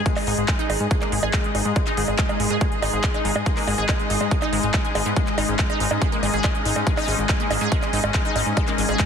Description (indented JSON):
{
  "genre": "psychedelic trance",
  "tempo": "141 BPM",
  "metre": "4/4",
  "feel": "straight",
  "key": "unclear",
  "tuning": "A4 = 440 Hz",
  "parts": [
    { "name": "pulsing gated texture", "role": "sustained chords", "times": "0.0-9.1 s", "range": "G#3 to G#4", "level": "-27 LUFS", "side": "left 2 dB", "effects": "chorus, built-in reverb, sidechain pumping" },
    { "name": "warm studio string section", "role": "texture", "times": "0.0-9.1 s", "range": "D#4 to D#5", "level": "-29 LUFS", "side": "left 1 dB", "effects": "sidechain pumping" },
    { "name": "wide unison pluck", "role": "riff", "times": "0.1-9.0 s", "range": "G#3 to G#4", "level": "-28 LUFS", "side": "moving between left 5 dB and right 6 dB", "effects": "auto-pan, sidechain pumping, digital delay" },
    { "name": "big-room dance drum kit", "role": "drums", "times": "0.1-9.1 s", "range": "bongos, handclaps, hi-hat", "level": "-26 LUFS", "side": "right 2 dB", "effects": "none" },
    { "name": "electronic kick drum", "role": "drums", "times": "0.1-9.1 s", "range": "none", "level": "-22 LUFS", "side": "equal", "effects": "none" },
    { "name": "plucky analog bass", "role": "bass", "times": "0.3-9.0 s", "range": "G#1 to G#2", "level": "-26 LUFS", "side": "equal", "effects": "none" }
  ],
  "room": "light reverb, digital ambience",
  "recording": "dense, heavily limited modern master",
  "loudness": "-19 LUFS",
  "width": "side -7 dB against mid",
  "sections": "0.0-9.1 A section",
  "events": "none",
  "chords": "0.0 G#5"
}